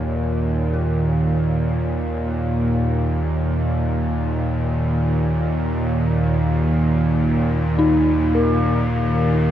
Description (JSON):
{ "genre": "dark ambient drone", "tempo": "free time", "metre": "none", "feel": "none", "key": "unclear", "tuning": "A4 = 441 Hz", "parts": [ { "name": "dark detuned synth bell", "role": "arpeggios", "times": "0.0-9.5 s", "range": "Eb4 to Bb4", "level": "-24 LUFS", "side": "left 2 dB", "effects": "chorus, tape echo" }, { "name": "bowed-like drone", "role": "drone", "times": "0.0-9.5 s", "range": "Eb2 to Bb2", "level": "-18 LUFS", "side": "equal", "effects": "built-in reverb" }, { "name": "bronze singing bowl", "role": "texture", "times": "0.0-9.5 s", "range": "Bb4 to Db5", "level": "-28 LUFS", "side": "left 2 dB", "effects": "none" } ], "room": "wet cathedral reverb, RT60 6.6 s", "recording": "dark, warm production", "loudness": "-18 LUFS", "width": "side -11 dB against mid", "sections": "0.0-9.5 A section", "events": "none", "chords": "0.0 Eb5" }